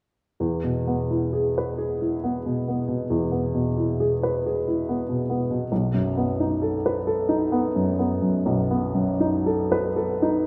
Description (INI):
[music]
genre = classical, romantic nocturne for solo piano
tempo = 36-50 BPM (dotted quarters)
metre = 12/8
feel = rubato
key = E major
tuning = A4 = 440 Hz
[part]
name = warm upright piano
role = solo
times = 0.4-10.5 s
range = B1 to B4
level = -24 LUFS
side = equal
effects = none
[sound]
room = wet concert hall reverb, RT60 1.9 s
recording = recorded in a church or concert hall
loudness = -24 LUFS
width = mono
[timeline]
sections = 0.4-10.5 A section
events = none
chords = 0.4 E; 5.7 B7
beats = | 0.41 1.80 3.11 4.46 | 5.71 7.06 8.47 9.96